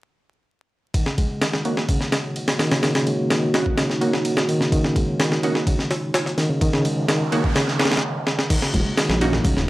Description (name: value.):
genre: breakbeat, breaks.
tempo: 127 BPM.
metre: 4/4.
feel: straight.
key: Eb minor pentatonic.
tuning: A4 = 440 Hz.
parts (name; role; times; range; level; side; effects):
dark analog pad; sustained chords; 0.9-9.7 s; Bb3 to Db5; -28 LUFS; equal; chorus, vintage 12-bit sampler grit, sidechain pumping.
bright reed electric piano; riff; 0.9-9.7 s; Db3 to Ab3; -24 LUFS; equal; fast tremolo, tube saturation, low-pass filter, analog delay.
breakbeat sampler-style drum kit; drums; 0.9-9.7 s; crash cymbal, kick drum, ride cymbal, snare drum; -21 LUFS; equal; none.
orchestra-hit-like synth stab; stabs; 1.6-9.3 s; Bb3 to Gb4; -25 LUFS; right 2 dB; built-in reverb, analog delay.
noise sweep; sound effects; 6.9-8.5 s; none; -31 LUFS; right 4 dB; none.
dark detuned saw bass; bass; 8.7-9.7 s; Eb1 to Bb1; -23 LUFS; equal; none.
congas; percussion; 8.7-9.5 s; none; -28 LUFS; right 1 dB; none.
room: moderate plate reverb, RT60 1.0 s, digital ambience.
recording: dry, gritty hardware recording, vinyl crackle.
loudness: -18 LUFS.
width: side -18 dB against mid.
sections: 0.9-8.5 A section; 8.5-9.7 B section.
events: filter sweep on synth stab 0.9-8.5; filter sweep on analog synth pad 0.9-8.5; noise sweep 6.9-8.5; stop 8.0-8.5; drum fill 8.3.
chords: 0.9 Ebm7.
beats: | 0.94 1.42 1.89 2.36 | 2.83 3.30 3.78 4.25 | 4.72 5.19 5.67 6.14 | 6.61 7.08 7.56 8.03 | 8.50 8.97 9.45.